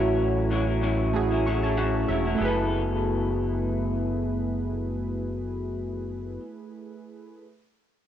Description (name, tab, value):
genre	indie pop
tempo	96 BPM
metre	4/4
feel	swing 55% on 16ths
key	F# minor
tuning	A4 = 439 Hz
part	electric guitar through a small old amp	accompaniment	0.0-6.4 s	A2 to A4	-28 LUFS	left 5 dB	lush chorus, vibrato effect, plate reverb
part	warm analog keys	accompaniment	0.0-7.4 s	A3 to C#6	-29 LUFS	right 5 dB	chorus, plate reverb
part	deep dub fingered electric bass	bass	0.0-6.4 s	E1 to A1	-29 LUFS	equal	none
room	moderate small room ambience, RT60 0.5 s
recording	cassette tape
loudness	-24 LUFS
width	side -10 dB against mid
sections	0.0-2.4 A section; 2.4-4.9 B section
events	synth keys fill 1.1-2.4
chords	0.0 A6; 2.4 F#m11